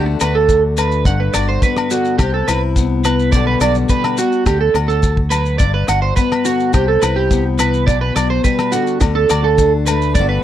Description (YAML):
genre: highlife guitar band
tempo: 106 BPM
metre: 4/4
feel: straight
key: G major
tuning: A4 = 440 Hz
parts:
  - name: fingerpicked steel-string acoustic guitar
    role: accompaniment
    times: 0.0-10.4 s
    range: G2 to F#4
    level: -20 LUFS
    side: left 8 dB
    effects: none
  - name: electric guitar at the edge of break-up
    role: arpeggios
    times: 0.0-10.4 s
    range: F#4 to F#5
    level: -17 LUFS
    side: right 5 dB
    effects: analog chorus, slapback echo
  - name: fingered electric bass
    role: bass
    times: 0.0-10.4 s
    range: G1 to D2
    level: -18 LUFS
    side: equal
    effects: none
  - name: damped 70s drum kit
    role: drums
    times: 0.2-10.3 s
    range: hi-hat, kick drum, rim click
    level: -17 LUFS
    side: equal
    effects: none
  - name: agogo bells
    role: percussion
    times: 0.2-10.0 s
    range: none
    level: -26 LUFS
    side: left 8 dB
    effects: none
  - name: maracas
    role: percussion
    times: 0.2-10.3 s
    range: none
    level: -28 LUFS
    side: left 8 dB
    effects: none
room: little or no reverb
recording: dry, close 1970s-style studio recording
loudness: -13 LUFS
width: side -11 dB against mid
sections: 0.0-10.4 A section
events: none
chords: 0.0 D; 1.1 Gmaj7; 2.2 Cmaj7; 3.3 Gmaj7/B; 4.5 D; 5.6 Gmaj7; 6.7 Cmaj7; 7.9 Gmaj7/B; 9.0 D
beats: 0.49 | 1.05 1.62 2.19 2.76 | 3.33 3.90 4.46 5.03 | 5.60 6.17 6.74 7.31 | 7.88 8.45 9.02 9.59 | 10.16